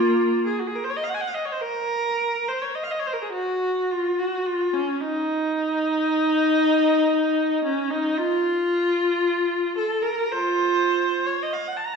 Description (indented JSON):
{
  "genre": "classical, free, expressive piece for unaccompanied viola",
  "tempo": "51-57 BPM",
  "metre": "4/4",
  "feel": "rubato",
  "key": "unclear",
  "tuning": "A4 = 440 Hz",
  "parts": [
    { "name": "rich viola", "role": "solo", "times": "0.0-12.0 s", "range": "Bb3 to Bb5", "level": "-21 LUFS", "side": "equal", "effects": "none" }
  ],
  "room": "wet recital hall reverb, RT60 1.5 s",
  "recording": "dark, warm production",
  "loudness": "-21 LUFS",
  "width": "side -5 dB against mid",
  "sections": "0.0-12.0 A section",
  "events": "none",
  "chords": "none",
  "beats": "0.46 1.59 2.76 | 3.91 5.01 6.06 7.11 | 8.17 9.24 10.31 11.46"
}